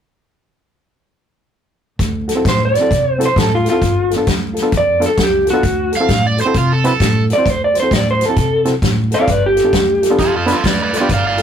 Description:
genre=electric blues shuffle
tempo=132 BPM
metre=4/4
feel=swing 64% on 8ths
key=unclear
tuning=A4 = 439 Hz
part: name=upright bass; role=bass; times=2.0-11.4 s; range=G1 to C3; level=-19 LUFS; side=equal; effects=none
part: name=natural country drum kit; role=drums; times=2.0-11.4 s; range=hi-hat, kick drum, snare drum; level=-19 LUFS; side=equal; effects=none
part: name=barky reed electric piano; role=accompaniment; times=2.3-11.4 s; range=B3 to C5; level=-19 LUFS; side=equal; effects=none
part: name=electric guitar through a small old amp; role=melody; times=2.5-10.3 s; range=F4 to F5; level=-15 LUFS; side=equal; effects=none
part: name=overdriven slide guitar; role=second line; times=6.0-7.2, 10.2-11.4 s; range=F4 to F5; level=-17 LUFS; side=right 4 dB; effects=none
room=light reverb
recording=rough rehearsal-room recording, tube saturation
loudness=-12 LUFS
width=side -8 dB against mid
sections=2.0-11.4 A section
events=none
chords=2.0 D7; 3.8 G7; 5.6 D7; 9.3 G7

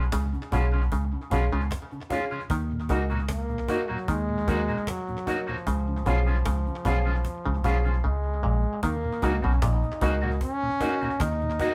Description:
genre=roots reggae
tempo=76 BPM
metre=4/4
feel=straight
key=Eb minor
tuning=A4 = 439 Hz
part: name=electric guitar with an envelope filter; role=accompaniment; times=0.0-11.7 s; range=F3 to Ab4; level=-36 LUFS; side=equal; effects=none
part: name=mellow tonewheel organ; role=accompaniment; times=0.0-11.7 s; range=Eb2 to Gb4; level=-38 LUFS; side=equal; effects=slow rotary speaker
part: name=vintage muted fingered electric bass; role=bass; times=0.0-11.6 s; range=Bb1 to Eb2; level=-28 LUFS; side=equal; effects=none
part: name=muted clav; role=riff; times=0.1-11.4 s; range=Bb2 to Eb3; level=-37 LUFS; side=equal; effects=tape echo
part: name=cajon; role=drums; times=0.1-11.7 s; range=none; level=-40 LUFS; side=equal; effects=tape echo
part: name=dark upright piano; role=stabs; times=0.5-11.7 s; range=F4 to Gb5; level=-33 LUFS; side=equal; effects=none
part: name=clear trombone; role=melody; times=3.3-11.7 s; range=F3 to Eb4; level=-33 LUFS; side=equal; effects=tube saturation
room=moderate stone room reverb, RT60 0.9 s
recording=band playing live in one room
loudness=-26 LUFS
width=mono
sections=0.0-8.8 A section; 8.8-11.7 B section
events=drums muted 8.0-8.8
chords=0.0 Db; 2.5 Ebm; 5.7 Db; 8.8 Ebm

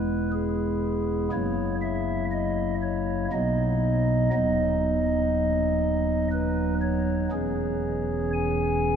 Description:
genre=classical, chorale-style piece for pipe organ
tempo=60 BPM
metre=3/4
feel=straight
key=B major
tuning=A4 = 440 Hz
part: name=pipe organ, stopped flute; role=solo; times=0.0-9.0 s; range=D#1 to G#5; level=-23 LUFS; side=equal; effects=none
room=wet cathedral reverb, RT60 6.0 s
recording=minimal, uncompressed stereo recording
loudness=-23 LUFS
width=side -8 dB against mid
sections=0.0-9.0 A section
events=none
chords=0.0 E; 1.3 F#7; 3.3 B; 4.3 B/D#; 7.3 C#m/E

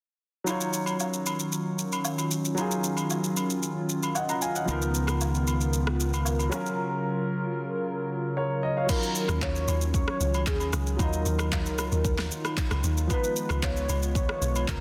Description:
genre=amapiano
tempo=114 BPM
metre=4/4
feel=straight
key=Eb minor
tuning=A4 = 440 Hz
part: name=warm baby grand piano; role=accompaniment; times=0.4-14.8 s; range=F3 to Bb5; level=-34 LUFS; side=equal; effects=none
part: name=hollow soft pad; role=sustained chords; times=0.5-14.8 s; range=Db3 to Bb4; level=-34 LUFS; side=equal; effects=chorus, sidechain pumping
part: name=deep house drum kit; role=drums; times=0.5-14.8 s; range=crash cymbal, handclaps, kick drum, rim click, shaker, snare drum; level=-34 LUFS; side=equal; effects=soft clipping on snare
part: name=agogo bells and woodblock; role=percussion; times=0.5-14.7 s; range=none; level=-40 LUFS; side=equal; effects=none
part: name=modern bright fingered electric bass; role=bass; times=4.7-6.5 s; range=Db2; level=-29 LUFS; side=equal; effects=none
part: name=warm velvety synth lead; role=melody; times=8.8-14.8 s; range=Ab4 to Db5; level=-35 LUFS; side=equal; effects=chorus, digital delay
part: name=deep log drum bass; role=bass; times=9.3-14.8 s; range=Cb2 to Eb2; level=-30 LUFS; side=equal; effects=none
room=moderate lush hall reverb, RT60 1.7 s, digital ambience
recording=dense, heavily limited modern master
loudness=-28 LUFS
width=mono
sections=0.5-8.9 A section; 8.9-14.8 B section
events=none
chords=0.5 Ebm9; 4.7 Db13; 6.5 Gbmaj7; 8.9 Ebm9; 13.1 Db9

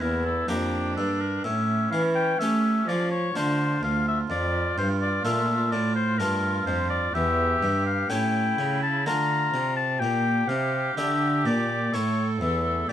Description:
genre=classical, baroque-style sonata movement with continuo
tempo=63 BPM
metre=3/4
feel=straight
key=D minor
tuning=A4 = 440 Hz
part: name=warm oboe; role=melody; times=0.0-12.9 s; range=G4 to Bb5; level=-27 LUFS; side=left 6 dB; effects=none
part: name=clear oboe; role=second line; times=0.0-12.9 s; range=C#4 to A4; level=-31 LUFS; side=right 8 dB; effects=none
part: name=harpsichord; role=accompaniment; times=0.0-12.9 s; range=D2 to G4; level=-30 LUFS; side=left 1 dB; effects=none
part: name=rich cello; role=bass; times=0.0-12.9 s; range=D2 to A3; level=-27 LUFS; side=right 2 dB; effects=none
room=light reverb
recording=close, detailed microphones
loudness=-22 LUFS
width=side -10 dB against mid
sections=0.0-12.9 A section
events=none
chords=0.0 Edim; 1.5 A7; 3.4 Dm; 4.3 Dm/F; 7.2 A7/E; 9.1 Dm; 10.0 Gm/Bb; 11.9 A

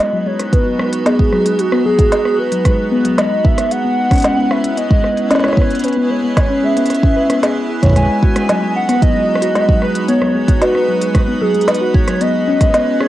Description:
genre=IDM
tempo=113 BPM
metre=4/4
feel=straight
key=G# minor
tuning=A4 = 440 Hz
part: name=warbly nostalgic lead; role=melody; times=0.0-13.1 s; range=F#4 to G#5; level=-18 LUFS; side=right 1 dB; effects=wide subtle chorus, cassette tape, analog delay
part: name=icy glass pad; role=sustained chords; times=0.0-13.1 s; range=G#3 to B4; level=-22 LUFS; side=equal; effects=chorus, built-in reverb, cassette tape
part: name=harp-like synth pluck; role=arpeggios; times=0.0-13.1 s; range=F#3 to C#5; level=-17 LUFS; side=left 1 dB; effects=chorus, cassette tape, analog delay
part: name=organic electronic drum kit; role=drums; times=0.0-13.1 s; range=hi-hat, rim click, snare drum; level=-20 LUFS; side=equal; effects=none
part: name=electronic kick drum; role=drums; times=0.5-12.7 s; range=none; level=-13 LUFS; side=equal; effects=none
room=moderate studio reverb, RT60 0.5 s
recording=home recording on cassette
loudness=-12 LUFS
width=side -14 dB against mid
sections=0.0-13.1 A section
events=none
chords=0.0 G#m7; 3.7 C#m7; 8.0 G#m7; 12.2 C#m7

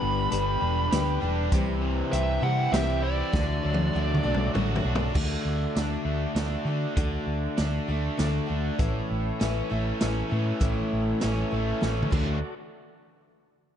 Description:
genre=folk rock and heartland rock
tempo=99 BPM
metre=3/4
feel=straight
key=D major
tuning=A4 = 441 Hz
part: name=dark smooth lead guitar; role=melody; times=0.0-4.5 s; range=D5 to B5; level=-31 LUFS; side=right 2 dB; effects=overdrive, tape echo
part: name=picked steel-string acoustic guitar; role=accompaniment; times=0.0-12.4 s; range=G2 to G4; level=-31 LUFS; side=left 4 dB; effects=none
part: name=bright tonewheel organ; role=sustained chords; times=0.0-12.5 s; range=D4 to D5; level=-39 LUFS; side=equal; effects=slow rotary speaker, overdrive
part: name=crunchy overdriven guitar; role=riff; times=0.0-12.4 s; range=G2 to G4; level=-32 LUFS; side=right 2 dB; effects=spring reverb
part: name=hollow-body short-scale fingered electric bass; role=bass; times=0.0-12.4 s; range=E1 to D3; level=-28 LUFS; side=equal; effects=none
part: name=vintage drum kit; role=drums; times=0.3-12.3 s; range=crash cymbal, hi-hat, kick drum, snare drum, toms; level=-29 LUFS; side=equal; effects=none
room=light reverb, small room ambience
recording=dark, warm production, nothing above 10.3 kHz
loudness=-24 LUFS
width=side -9 dB against mid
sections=0.0-5.2 A section; 5.2-12.4 B section; 12.4-13.8 C section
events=drum fill 3.3-5.2, 11.8-12.4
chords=0.0 G; 1.5 C; 3.3 D; 8.8 A; 12.1 D

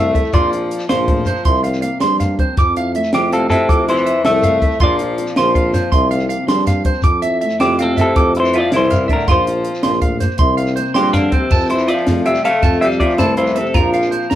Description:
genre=highlife guitar band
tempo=107 BPM (dotted quarters)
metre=12/8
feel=straight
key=F major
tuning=A4 = 439 Hz
part: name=semi-hollow electric guitar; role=melody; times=0.0-14.3 s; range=Bb3 to F5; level=-17 LUFS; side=left 1 dB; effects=none
part: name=warm tenor saxophone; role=second line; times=0.0-14.3 s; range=Bb2 to A3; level=-24 LUFS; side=left 2 dB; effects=none
part: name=nylon-string guitar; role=accompaniment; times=0.0-14.4 s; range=F2 to A4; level=-25 LUFS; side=left 3 dB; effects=none
part: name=electric guitar at the edge of break-up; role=arpeggios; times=0.0-14.4 s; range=C5 to D6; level=-20 LUFS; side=right 4 dB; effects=none
part: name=breathy tuba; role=bass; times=0.0-14.4 s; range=Bb1 to G2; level=-21 LUFS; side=equal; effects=none
part: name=compact cocktail drum kit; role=drums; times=0.1-14.4 s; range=crash cymbal, hi-hat, kick drum, snare drum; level=-18 LUFS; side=equal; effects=none
part: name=shekere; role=percussion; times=0.2-14.4 s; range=none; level=-21 LUFS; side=equal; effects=none
room=moderate studio reverb, RT60 0.5 s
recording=band playing live in one room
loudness=-13 LUFS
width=side -12 dB against mid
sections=0.0-11.5 A section; 11.5-14.4 B section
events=none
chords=0.3 Bbsus2; 1.5 C7sus4; 2.6 Fmaj7; 4.8 Bbsus2; 5.9 C7sus4; 7.0 Fmaj7; 9.3 Bbsus2; 10.4 C7sus4; 11.5 Fmaj7; 13.8 Bbsus2

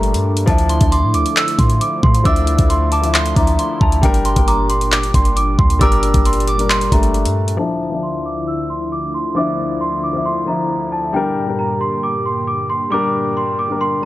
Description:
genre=hip hop, trap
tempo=135 BPM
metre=4/4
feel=half-time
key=D minor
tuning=A4 = 440 Hz
part: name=large celesta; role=melody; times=0.0-14.0 s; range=G5 to E6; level=-20 LUFS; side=right 1 dB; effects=low-pass filter
part: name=dark baby grand piano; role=accompaniment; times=0.0-14.1 s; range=F3 to Bb4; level=-21 LUFS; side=left 4 dB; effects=low-pass filter
part: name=sweeping resonant pad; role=sustained chords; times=0.0-14.1 s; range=D2 to G4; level=-25 LUFS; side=right 1 dB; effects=lush chorus, low-pass filter
part: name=clean 808-style bass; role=bass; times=0.0-7.6 s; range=G1 to A2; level=-17 LUFS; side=equal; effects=none
part: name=trap drum kit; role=drums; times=0.0-7.6 s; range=handclaps, hi-hat, kick drum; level=-16 LUFS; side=equal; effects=none
part: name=soft synth bell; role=second line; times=0.7-7.5 s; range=A5 to E6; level=-27 LUFS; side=right 3 dB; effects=chorus, phaser, digital delay
room=digital ambience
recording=none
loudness=-14 LUFS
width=side -16 dB against mid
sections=0.0-7.6 A section; 7.6-14.1 B section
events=filter sweep 7.6-14.1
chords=0.5 Dmadd9; 4.0 Gm; 7.6 Dmadd9; 11.1 Gm

